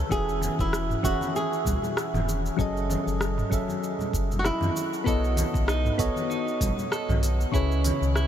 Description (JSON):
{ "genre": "sunset chillout", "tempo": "97 BPM", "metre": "4/4", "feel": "swing 55% on 16ths", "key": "F# dorian", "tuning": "A4 = 440 Hz", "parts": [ { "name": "flamenco guitar", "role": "melody", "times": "0.0-5.0 s", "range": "E4 to A4", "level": "-32 LUFS", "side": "right 1 dB", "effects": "vintage 12-bit sampler grit, analog delay" }, { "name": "soft electric-piano-like synth keys", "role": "accompaniment", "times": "0.0-8.3 s", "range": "C#3 to G#5", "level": "-29 LUFS", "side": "equal", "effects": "chorus, auto-pan, low-pass filter, analog delay" }, { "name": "warm sub bass", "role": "bass", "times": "0.0-8.3 s", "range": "E1 to F#2", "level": "-27 LUFS", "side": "equal", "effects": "tube saturation" }, { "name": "electronic kick drum", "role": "drums", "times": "0.1-7.7 s", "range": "none", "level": "-28 LUFS", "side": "equal", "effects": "none" }, { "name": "smooth R&B drum kit", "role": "drums", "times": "0.1-8.3 s", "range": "cabasa, hi-hat, rim click, toms", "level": "-34 LUFS", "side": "equal", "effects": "none" }, { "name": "congas", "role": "percussion", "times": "0.4-8.0 s", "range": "none", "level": "-35 LUFS", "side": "left 1 dB", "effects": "none" }, { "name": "clean electric guitar", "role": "arpeggios", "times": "5.1-8.3 s", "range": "D#4 to A4", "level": "-34 LUFS", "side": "right 3 dB", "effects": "spring reverb, analog delay" } ], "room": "moderate huge ambient reverb, RT60 8.3 s", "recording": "dreamy mix soaked in reverb", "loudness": "-24 LUFS", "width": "side -10 dB against mid", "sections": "0.0-8.3 A section", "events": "none", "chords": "0.1 E6; 2.6 F#m9; 5.1 B9; 7.5 Amaj9/C# (rootless)", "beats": "| 0.11 0.73 1.35 1.97 | 2.59 3.21 3.82 4.44 | 5.06 5.68 6.30 6.92 | 7.54 8.15" }